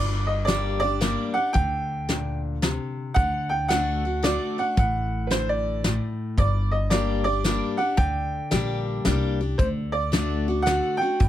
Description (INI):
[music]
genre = honky-tonk and classic country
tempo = 112 BPM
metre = 3/4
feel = swing 65% on 8ths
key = G harmonic minor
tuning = A4 = 439 Hz
[part]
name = clear upright piano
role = melody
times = 0.0-11.3 s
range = C5 to G5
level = -26 LUFS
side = right 2 dB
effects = none
[part]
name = picked steel-string acoustic guitar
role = accompaniment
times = 0.0-11.3 s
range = G2 to G4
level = -28 LUFS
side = left 3 dB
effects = none
[part]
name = upright bass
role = bass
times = 0.0-11.3 s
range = G1 to D2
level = -27 LUFS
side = equal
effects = none
[part]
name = soft brush drum kit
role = drums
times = 0.5-11.3 s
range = hi-hat, kick drum, snare drum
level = -25 LUFS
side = equal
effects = none
[part]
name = bright upright piano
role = second line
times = 5.3-6.0 s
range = B4 to D5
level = -27 LUFS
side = right 1 dB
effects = none
[sound]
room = little or no reverb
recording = close, detailed microphones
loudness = -22 LUFS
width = side -12 dB against mid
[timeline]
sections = 0.0-11.3 A section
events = none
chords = 0.0 Gm; 3.2 D; 6.4 Gm; 9.6 D